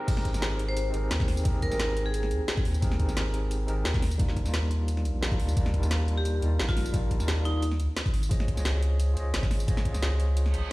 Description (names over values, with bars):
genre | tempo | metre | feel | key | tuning
liquid drum and bass | 175 BPM | 4/4 | swing 53% on 16ths | Ab major | A4 = 442 Hz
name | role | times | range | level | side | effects
overdriven tine electric piano | accompaniment | 0.0-10.7 s | G3 to G5 | -35 LUFS | equal | fast tremolo, digital delay
swell and reverse cymbal | sound effects | 0.0-0.1, 10.4-10.7 s | none | -40 LUFS | right 5 dB | none
electronic kick drum | drums | 0.1-9.9 s | none | -27 LUFS | equal | overdrive, high-pass filter on kick
garage drum kit | drums | 0.1-10.6 s | crash cymbal, hi-hat, snare drum, tambourine | -34 LUFS | equal | overdrive
warm sub bass | bass | 0.3-10.6 s | Ab1 to Eb2 | -27 LUFS | equal | none
vibraphone with hard mallets | melody | 0.7-2.4, 6.2-7.7 s | Eb4 to C5 | -34 LUFS | equal | digital delay
room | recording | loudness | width
little or no reverb | played on a big sound system in a bare room, stone room reverb | -25 LUFS | side -20 dB against mid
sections
0.1-10.7 A section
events
drop 0.1-10.7; reverse cymbal 10.4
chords
0.1 Abmaj9; 4.0 Ebmaj9; 7.6 Dbmaj9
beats
| 0.08 0.42 0.77 1.11 | 1.45 1.79 2.14 2.48 | 2.82 3.17 3.51 3.85 | 4.20 4.54 4.88 5.22 | 5.57 5.91 6.25 6.59 | 6.94 7.28 7.62 7.97 | 8.31 8.65 8.99 9.34 | 9.68 10.02 10.37 10.71